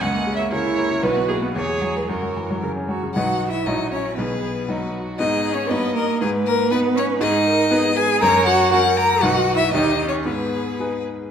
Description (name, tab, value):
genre	quick classical-period movement for piano quartet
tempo	118 BPM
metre	2/4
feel	rubato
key	B major, G# minor from 7.2 s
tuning	A4 = 440 Hz
part	rich violin	melody	0.0-11.0 s	E4 to A#5	-23 LUFS	left 5 dB	none
part	rich cello	second line	0.0-11.0 s	G#3 to A#4	-23 LUFS	right 4 dB	none
part	bright grand piano	accompaniment	0.0-11.3 s	A#1 to D#5	-24 LUFS	left 1 dB	none
part	rich viola	accompaniment	0.0-11.0 s	D#4 to F#5	-26 LUFS	right 3 dB	none
room	wet recital hall reverb, RT60 1.4 s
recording	none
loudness	-18 LUFS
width	side -8 dB against mid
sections	0.0-3.1 A section; 3.1-11.3 B section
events	none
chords	0.0 A#dim/C#; 1.0 B5; 1.5 C#m/E; 2.1 F#; 3.1 B; 3.7 F#7/A#; 4.2 B; 5.2 G#m; 5.7 D#7/G; 6.2 G#m; 8.2 F#; 9.2 B; 9.7 D#7; 10.3 G#m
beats	| 0.02 0.52 | 1.03 1.55 | 2.08 2.62 | 3.15 3.66 | 4.17 4.68 | 5.19 5.70 | 6.20 6.71 | 7.21 7.72 | 8.22 8.72 | 9.23 9.74 | 10.26 10.79